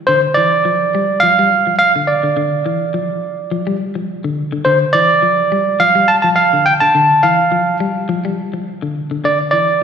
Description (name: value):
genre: afrobeat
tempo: 105 BPM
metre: 4/4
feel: swing 54% on 16ths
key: D minor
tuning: A4 = 440 Hz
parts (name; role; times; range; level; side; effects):
- barky tine electric piano; melody; 0.1-9.8 s; C5 to A5; -12 LUFS; right 2 dB; slapback echo
- clean electric guitar; arpeggios; 0.1-9.7 s; D3 to G3; -20 LUFS; left 4 dB; slapback echo
room: moderate lush hall reverb, RT60 3.2 s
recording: live gig heard through the venue's PA, recital hall reverb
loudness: -12 LUFS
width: side -7 dB against mid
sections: 0.1-9.8 A section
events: none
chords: 0.0 Dm